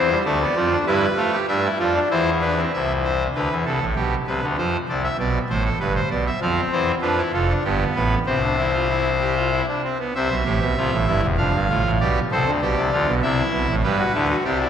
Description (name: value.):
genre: classical, baroque-style 3-part fugue for pipe organ.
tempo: 97 BPM.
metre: 3/4.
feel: straight.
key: C major from 6.4 s.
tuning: A4 = 440 Hz.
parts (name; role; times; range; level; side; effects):
pipe organ, trumpet; solo; 0.0-14.7 s; E1 to F5; -18 LUFS; equal; none.
room: wet church reverb, RT60 3.6 s.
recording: none.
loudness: -18 LUFS.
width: side -8 dB against mid.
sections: 0.0-2.7 A section; 2.7-10.2 B section; 10.2-14.7 A section.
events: none.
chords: 0.3 Dm7; 0.9 G7; 2.1 C/E; 2.7 Am/C; 4.0 G/B; 4.6 F; 5.8 Em/G; 6.4 F5; 7.0 Dm/F; 7.7 G; 8.3 C; 11.4 Dm/F; 12.0 G7/B; 13.2 C; 13.8 G.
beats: 0.26 | 0.87 1.49 2.11 | 2.73 3.35 3.97 | 4.58 5.19 5.81 | 6.42 7.03 7.65 | 8.27 8.90 9.53 | 10.15 10.77 11.39 | 12.00 12.62 13.23 | 13.84 14.45.